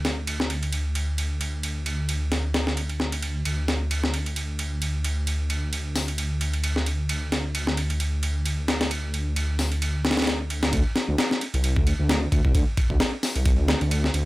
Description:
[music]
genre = breakbeat, breaks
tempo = 132 BPM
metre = 4/4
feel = swing 56% on 16ths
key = unclear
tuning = A4 = 440 Hz
[part]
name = dark detuned saw bass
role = bass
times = 0.0-14.2 s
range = C2 to D2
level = -25 LUFS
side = equal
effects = none
[part]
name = breakbeat sampler-style drum kit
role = drums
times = 0.0-14.3 s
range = hi-hat, kick drum, ride cymbal, snare drum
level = -25 LUFS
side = equal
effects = high-pass filter on snare, high-pass filter on cymbals, high-pass filter on hats, high-pass filter on kick
[sound]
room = light reverb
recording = none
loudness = -22 LUFS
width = side -19 dB against mid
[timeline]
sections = 0.0-10.7 A section; 10.7-14.3 B section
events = drop 10.7-14.3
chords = none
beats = 0.27 0.73 1.18 | 1.64 2.09 2.55 3.00 | 3.46 3.91 4.37 4.82 | 5.27 5.73 6.18 6.64 | 7.09 7.55 8.00 8.46 | 8.91 9.37 9.82 10.27 | 10.73 11.18 11.64 12.09 | 12.55 13.00 13.46 13.91

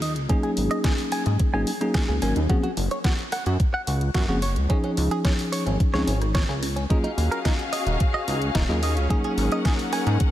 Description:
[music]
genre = nu-disco, nu disco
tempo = 109 BPM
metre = 4/4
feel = straight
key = unclear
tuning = A4 = 440 Hz
[part]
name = direct-recorded clean electric guitar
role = riff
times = 0.0-10.2 s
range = Db3 to Ab5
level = -30 LUFS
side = right 2 dB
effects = analog chorus, low-pass filter, ping-pong delay
[part]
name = chorused synth bass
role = bass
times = 0.0-10.2 s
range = Eb1 to Ab2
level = -24 LUFS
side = equal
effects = sidechain pumping
[part]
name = pop drum kit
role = drums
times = 0.0-10.3 s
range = hi-hat, rim click, snare drum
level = -32 LUFS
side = equal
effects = overdrive
[part]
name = bell-like tine electric piano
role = accompaniment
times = 0.3-10.3 s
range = F3 to Bb4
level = -27 LUFS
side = left 1 dB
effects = vintage 12-bit sampler grit, ping-pong delay
[part]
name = electronic kick drum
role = drums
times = 0.3-10.3 s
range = none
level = -22 LUFS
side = equal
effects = overdrive
[part]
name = rich studio string section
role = sustained chords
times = 6.9-10.3 s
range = Db4 to Gb5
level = -29 LUFS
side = left 3 dB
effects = sidechain pumping
[sound]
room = light reverb, digital ambience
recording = none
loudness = -21 LUFS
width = side -13 dB against mid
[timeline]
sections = 0.0-10.3 A section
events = filter sweep on clean electric guitar 0.0-10.3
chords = 0.3 Ab9sus4; 2.5 Gbmaj9#11; 4.4 Dbadd9; 6.9 Ebm11; 9.1 Ab9sus4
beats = | 0.30 0.85 1.40 1.95 | 2.50 3.05 3.60 4.15 | 4.70 5.25 5.80 6.35 | 6.90 7.45 8.00 8.55 | 9.10 9.65 10.21

